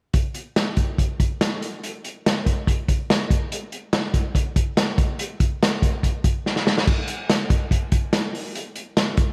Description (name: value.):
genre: indie pop.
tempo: 143 BPM.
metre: 4/4.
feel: straight.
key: none.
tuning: none.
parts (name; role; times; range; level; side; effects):
vintage drum kit; drums; 0.1-9.3 s; crash cymbal, hi-hat, kick drum, snare drum; -22 LUFS; equal; none.
room: moderate lush hall reverb, RT60 1.6 s.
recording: dreamy mix soaked in reverb.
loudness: -22 LUFS.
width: mono.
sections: 0.1-6.9 A section; 6.9-9.3 B section.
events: drum fill 6.5-6.9.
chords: none.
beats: | 0.14 0.56 0.99 1.41 | 1.83 2.25 2.67 3.09 | 3.51 3.93 4.35 4.77 | 5.19 5.61 6.03 6.45 | 6.87 7.29 7.71 8.13 | 8.55 8.97.